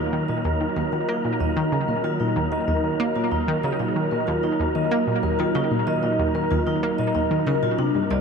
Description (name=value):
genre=ambient, sequencer-driven space music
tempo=94 BPM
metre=4/4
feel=straight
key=Eb minor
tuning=A4 = 445 Hz
part: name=sweeping resonant pad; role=sustained chords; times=0.0-8.2 s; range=Gb3 to Eb5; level=-26 LUFS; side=right 2 dB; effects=chorus
part: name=vibraphone with medium mallets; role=arpeggios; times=0.0-8.2 s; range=D4 to Eb5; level=-28 LUFS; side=moving between left 8 dB and equal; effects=auto-pan, tape echo
part: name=analog pluck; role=riff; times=0.0-8.2 s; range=C2 to Bb3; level=-24 LUFS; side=equal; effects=chorus, tape echo
part: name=wind-like tuned noise texture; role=texture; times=0.0-8.2 s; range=Bb4 to Bb5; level=-29 LUFS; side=right 1 dB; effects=built-in reverb
room=wet huge ambient reverb, RT60 8.1 s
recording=in a vast, echoing space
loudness=-20 LUFS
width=side -5 dB against mid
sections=0.0-8.2 A section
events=none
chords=0.0 Ebm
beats=| 0.13 0.76 1.40 2.04 | 2.68 3.32 3.96 4.59 | 5.23 5.87 6.51 7.15 | 7.79